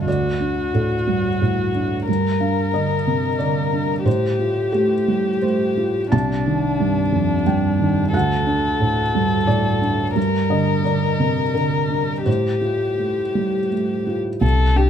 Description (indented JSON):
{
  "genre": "neoclassical piano and strings",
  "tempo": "82-91 BPM",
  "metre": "3/4",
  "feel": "rubato",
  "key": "G minor",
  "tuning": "A4 = 435 Hz",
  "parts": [
    { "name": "dark violin", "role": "melody", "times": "0.0-14.9 s", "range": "D4 to Bb4", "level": "-22 LUFS", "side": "left 4 dB", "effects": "none" },
    { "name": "felt-muted upright piano", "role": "accompaniment", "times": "0.0-14.9 s", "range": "C2 to A5", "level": "-19 LUFS", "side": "right 2 dB", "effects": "none" },
    { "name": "pure sine sub bass", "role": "bass", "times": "14.4-14.9 s", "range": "C2", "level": "-15 LUFS", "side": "left 1 dB", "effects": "none" }
  ],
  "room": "light reverb",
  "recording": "close, detailed microphones",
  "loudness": "-17 LUFS",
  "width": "side -8 dB against mid",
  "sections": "0.0-14.4 A section",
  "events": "none",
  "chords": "0.1 D; 2.1 Gm; 4.1 Fadd9/A; 6.1 Cmadd9; 8.1 D; 10.2 Gm; 12.3 Fadd9/A"
}